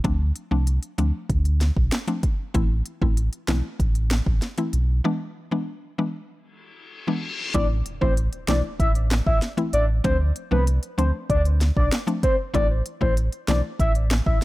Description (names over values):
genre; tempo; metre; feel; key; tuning
dancehall; 96 BPM; 4/4; straight; A harmonic minor; A4 = 440 Hz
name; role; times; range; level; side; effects
mallet-like synth pluck; accompaniment; 0.0-13.7 s; E3 to E4; -27 LUFS; left 2 dB; chorus
sub bass with octave; bass; 0.0-14.4 s; A1 to D2; -21 LUFS; equal; none
afro-pop drum kit; drums; 0.0-14.4 s; handclaps, hi-hat, kick drum, snare drum; -24 LUFS; equal; none
reverse cymbal and impact; sound effects; 6.7-10.0 s; none; -35 LUFS; left 2 dB; none
soft octave-layered synth lead; melody; 7.5-14.4 s; B4 to E5; -26 LUFS; left 1 dB; chorus, analog delay
room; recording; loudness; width
digital ambience; echo-heavy mix; -20 LUFS; side -18 dB against mid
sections
0.0-7.5 A section; 7.5-14.4 B section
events
break 5.0-7.5; reverse cymbal 6.7-7.5; impact 7.5-10.0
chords
0.0 Dm7; 2.5 Am; 5.0 E7; 7.5 Am; 10.0 Dm7; 12.5 Am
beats
| 0.04 0.67 1.29 1.92 | 2.54 3.17 3.79 4.42 | 5.04 5.67 6.29 6.92 | 7.54 8.17 8.79 9.42 | 10.04 10.67 11.29 11.92 | 12.54 13.17 13.79 14.42